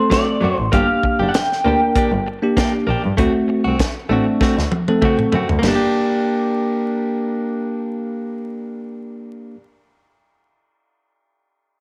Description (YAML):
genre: straight-eighth soul blues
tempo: 98 BPM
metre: 4/4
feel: swing 54% on 16ths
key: G harmonic minor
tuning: A4 = 440 Hz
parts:
  - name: electric guitar through a small old amp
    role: melody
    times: 0.0-2.2 s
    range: C5 to G5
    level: -22 LUFS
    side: equal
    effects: lush chorus
  - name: bell-like tine electric piano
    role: accompaniment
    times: 0.0-9.6 s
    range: A3 to Bb4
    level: -22 LUFS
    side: equal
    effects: none
  - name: direct-recorded clean electric guitar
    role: stabs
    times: 0.1-9.6 s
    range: F#3 to G4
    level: -26 LUFS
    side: equal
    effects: slapback echo
  - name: tight funk drum kit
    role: drums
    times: 0.1-5.8 s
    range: hi-hat, kick drum, ride cymbal, snare drum, toms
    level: -24 LUFS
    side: equal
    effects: none
  - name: rich double bass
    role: bass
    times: 0.4-5.7 s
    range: F#1 to G2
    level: -24 LUFS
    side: equal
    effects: none
room: moderate spring reverb, RT60 1.6 s, small room ambience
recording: vinyl crackle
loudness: -18 LUFS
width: mono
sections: 0.0-5.6 A section; 5.6-8.1 B section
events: drum fill 4.4-5.6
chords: 0.0 D7; 0.7 Gm; 3.2 D7; 5.6 Gm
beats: 0.11 | 0.73 1.34 1.96 2.57 | 3.18 3.80 4.41 5.03 | 5.64 6.25 6.86 7.48